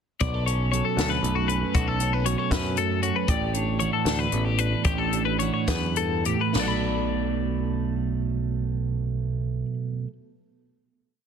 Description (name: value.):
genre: math rock and midwest emo.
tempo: 66-78 BPM (dotted quarters).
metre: 6/8.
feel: straight.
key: B minor.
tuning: A4 = 441 Hz.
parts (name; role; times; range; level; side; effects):
twelve-string electric guitar; accompaniment; 0.2-10.1 s; F#2 to A4; -27 LUFS; right 7 dB; spring reverb.
twelve-string electric guitar; arpeggios; 0.2-9.7 s; F#4 to B5; -28 LUFS; left 11 dB; none.
picked electric bass; bass; 0.2-9.6 s; A1 to F#2; -28 LUFS; left 1 dB; none.
compact cocktail drum kit; drums; 0.2-6.7 s; crash cymbal, hi-hat, kick drum, snare drum, toms; -28 LUFS; left 1 dB; none.
room: light reverb, studio reverb.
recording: dense, heavily limited modern master, lossy compression artefacts.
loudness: -23 LUFS.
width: side -7 dB against mid.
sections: 0.2-6.6 A section; 6.6-10.2 final chord.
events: slowing down 3.3-6.6.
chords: 0.2 Bm9; 3.3 A9sus4; 6.6 Bm7.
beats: | 0.21 0.98 | 1.74 2.51 | 3.28 4.05 | 4.85 5.68 | 6.55 7.46 | 8.36 9.26.